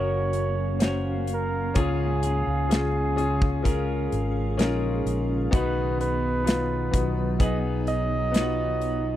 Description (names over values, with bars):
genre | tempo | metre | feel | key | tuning
pop ballad | 64 BPM | 4/4 | straight | unclear | A4 = 442 Hz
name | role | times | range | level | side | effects
warm flugelhorn | melody | 0.0-9.2 s | G#4 to D#5 | -30 LUFS | right 3 dB | tape echo
clear baby grand piano | accompaniment | 0.0-9.2 s | G#2 to C#5 | -29 LUFS | left 6 dB | none
granular cloud pad | sustained chords | 0.0-9.2 s | C#3 to E#5 | -34 LUFS | right 1 dB | built-in reverb
twelve-string electric guitar | arpeggios | 0.0-9.2 s | B2 to B4 | -34 LUFS | right 5 dB | warbly pitch drift
fingered electric bass | bass | 0.0-9.2 s | F#1 to C#2 | -28 LUFS | equal | none
modern studio drum kit | drums | 0.3-9.0 s | hi-hat, kick drum, snare drum | -24 LUFS | equal | none
room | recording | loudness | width
small room ambience | dry, close 1970s-style studio recording | -22 LUFS | side -12 dB against mid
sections
0.0-9.2 A section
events
none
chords
0.0 F#; 1.8 C#; 5.5 B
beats
0.81 | 1.75 2.70 3.64 4.58 | 5.52 6.46 7.39 8.33